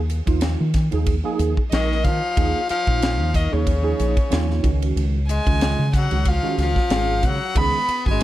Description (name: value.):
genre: electric jazz fusion.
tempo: 92 BPM.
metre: 4/4.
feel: swing 55% on 16ths.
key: unclear.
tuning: A4 = 444 Hz.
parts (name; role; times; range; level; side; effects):
fingered electric bass; bass; 0.0-8.2 s; Ab1 to Eb3; -21 LUFS; equal; none.
tine electric piano; accompaniment; 0.1-8.2 s; Eb3 to Bb4; -27 LUFS; right 6 dB; ensemble chorus.
crisp fusion drum kit; drums; 0.1-8.2 s; hi-hat, kick drum, ride cymbal, snare drum; -23 LUFS; equal; none.
rich violin; melody; 1.7-8.2 s; Db5 to Cb6; -25 LUFS; equal; none.
growling tenor saxophone; second line; 1.7-8.2 s; Db3 to Cb4; -28 LUFS; left 5 dB; none.
room: small room ambience.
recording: dark, warm production.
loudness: -18 LUFS.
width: side -14 dB against mid.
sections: 0.0-8.2 A section.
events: none.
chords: 0.0 Eb9sus4; 4.6 Db9sus4.